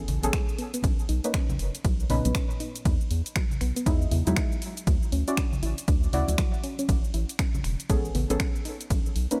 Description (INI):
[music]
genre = deep house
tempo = 119 BPM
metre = 4/4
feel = swing 61% on 16ths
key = A major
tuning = A4 = 440 Hz
[part]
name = deep mellow chord stab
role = stabs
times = 0.0-9.4 s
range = A#2 to D5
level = -34 LUFS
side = equal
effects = chorus, sidechain pumping, digital delay
[part]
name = round analog bass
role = bass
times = 0.0-9.3 s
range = E1 to E2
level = -30 LUFS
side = equal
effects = none
[part]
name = punchy analog drum machine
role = drums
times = 0.1-9.4 s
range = finger snaps, hi-hat, ride cymbal, shaker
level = -38 LUFS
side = equal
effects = overdrive, studio reverb
[part]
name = congas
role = percussion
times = 0.1-9.0 s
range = none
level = -38 LUFS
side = equal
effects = sidechain pumping on perc
[part]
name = soft round pluck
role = arpeggios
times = 0.3-9.0 s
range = F#3 to E4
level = -38 LUFS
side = equal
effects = chorus, sidechain pumping, digital delay
[part]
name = electronic kick drum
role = drums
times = 0.3-9.0 s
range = none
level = -29 LUFS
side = equal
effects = overdrive, studio reverb
[sound]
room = little or no reverb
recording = none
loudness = -27 LUFS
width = mono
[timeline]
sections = 0.0-9.4 A section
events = none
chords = 0.0 Amaj9; 0.6 Bmaj9; 2.9 Emaj9; 4.6 Dmaj9; 6.9 Amaj9; 8.7 Bmaj9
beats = 0.33 | 0.84 1.34 1.85 2.35 | 2.85 3.36 3.86 4.37 | 4.87 5.38 5.88 6.38 | 6.89 7.39 7.90 8.40 | 8.90